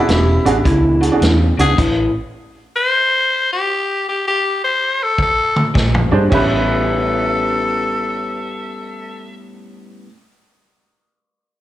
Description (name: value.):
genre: electric blues shuffle.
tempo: 106 BPM.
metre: 4/4.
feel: swing 66% on 8ths.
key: A mixolydian.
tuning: A4 = 441 Hz.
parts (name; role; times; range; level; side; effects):
growling tenor saxophone; melody; 0.0-9.3 s; E4 to C5; -18 LUFS; left 2 dB; slapback echo.
warm upright piano; accompaniment; 0.0-1.7, 6.1-10.1 s; C#4 to C5; -20 LUFS; right 4 dB; slapback echo.
electric guitar through a small old amp; riff; 0.0-2.1, 5.7-10.1 s; E2 to C#4; -22 LUFS; left 2 dB; slapback echo.
electric slide guitar; second line; 0.1-1.4, 6.3-9.3 s; E4 to E5; -22 LUFS; right 2 dB; slapback echo.
vintage muted fingered electric bass; bass; 0.1-2.1, 5.8-10.0 s; E1 to G2; -18 LUFS; equal; none.
vintage drum kit; drums; 0.1-6.5 s; crash cymbal, hi-hat, kick drum, snare drum, toms; -20 LUFS; equal; none.
room: light reverb, small room ambience.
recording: live gig heard through the venue's PA, club reverb.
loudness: -14 LUFS.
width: side -13 dB against mid.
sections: 0.0-6.3 A section; 6.3-8.6 B section.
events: stop 1.8-5.7; drum fill 5.2-6.3.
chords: 0.0 E9; 1.8 A5; 5.7 Bb9; 6.3 A9.